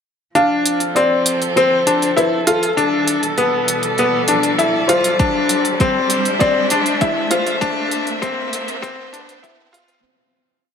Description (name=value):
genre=piano and strings electronica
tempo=99 BPM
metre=4/4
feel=straight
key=unclear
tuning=A4 = 439 Hz
part: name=rich string quartet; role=sustained chords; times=0.3-10.0 s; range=B2 to E5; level=-23 LUFS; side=right 2 dB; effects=sidechain pumping
part: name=round analog bass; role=bass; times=0.3-10.0 s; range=none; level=barely audible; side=none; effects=none
part: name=riser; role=sound effects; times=1.8-10.0 s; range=none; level=-28 LUFS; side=right 2 dB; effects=none
part: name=felt-muted upright piano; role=melody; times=0.4-9.7 s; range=A4 to F5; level=-20 LUFS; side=left 2 dB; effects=ping-pong delay
part: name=bright upright piano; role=riff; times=0.4-9.9 s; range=B3 to F4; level=-18 LUFS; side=left 2 dB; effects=ping-pong delay
part: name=electronic hi-hat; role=drums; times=0.4-10.0 s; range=none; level=-22 LUFS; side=right 1 dB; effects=none
part: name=electronic kick drum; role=drums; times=5.2-9.6 s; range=none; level=-20 LUFS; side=right 1 dB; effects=none
room=wet echo chamber reverb, RT60 2.4 s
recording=high-pass filter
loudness=-14 LUFS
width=side -7 dB against mid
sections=0.4-10.1 build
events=build-up 0.4-10.1; filter sweep 0.4-10.1; riser 1.8-10.1; fade-out 6.8-10.1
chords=0.4 F; 2.8 Gadd9; 5.2 Cadd9; 7.6 Am